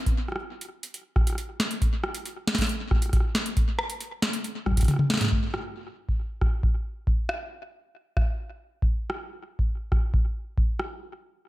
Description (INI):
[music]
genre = IDM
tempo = 137 BPM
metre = 4/4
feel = straight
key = none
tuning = none
[part]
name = booming analog drum machine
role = drums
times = 0.1-10.9 s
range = hi-hat, rim click, snare drum, toms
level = -28 LUFS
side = equal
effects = tape echo
[part]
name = electronic kick drum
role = drums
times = 0.1-10.7 s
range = none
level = -24 LUFS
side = equal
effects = none
[sound]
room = light reverb, digital ambience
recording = none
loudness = -24 LUFS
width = side -17 dB against mid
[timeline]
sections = 0.0-5.3 A section; 5.3-11.5 B section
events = drum fill 4.7-5.3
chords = none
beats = | 0.07 0.50 0.94 1.38 | 1.82 2.25 2.69 3.13 | 3.57 4.01 4.45 4.88 | 5.32 5.76 6.20 6.63 | 7.07 7.51 7.95 8.39 | 8.82 9.26 9.70 10.14 | 10.58